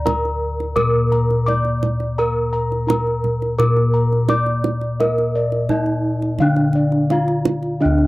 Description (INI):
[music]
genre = Javanese gamelan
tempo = 85 BPM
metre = 4/4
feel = straight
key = unclear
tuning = A4 = 441 Hz
[part]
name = gamelan-type bronze metallophone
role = melody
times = 0.0-8.1 s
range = D4 to D5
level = -21 LUFS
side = right 1 dB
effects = none
[part]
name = gamelan-type bossed gongs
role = arpeggios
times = 0.0-8.1 s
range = D5 to D6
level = -25 LUFS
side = left 3 dB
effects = none
[part]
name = gamelan-type bossed gongs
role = bass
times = 0.0-8.1 s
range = D2 to D5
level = -19 LUFS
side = left 1 dB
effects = none
[part]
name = kendang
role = percussion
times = 0.1-8.1 s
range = none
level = -25 LUFS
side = right 5 dB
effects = none
[part]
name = gamelan-type bronze metallophone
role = accompaniment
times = 7.8-8.1 s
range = D3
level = -21 LUFS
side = right 2 dB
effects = none
[sound]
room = little or no reverb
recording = dry, close 1970s-style studio recording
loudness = -16 LUFS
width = side -19 dB against mid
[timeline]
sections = 0.0-8.1 A section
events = none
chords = none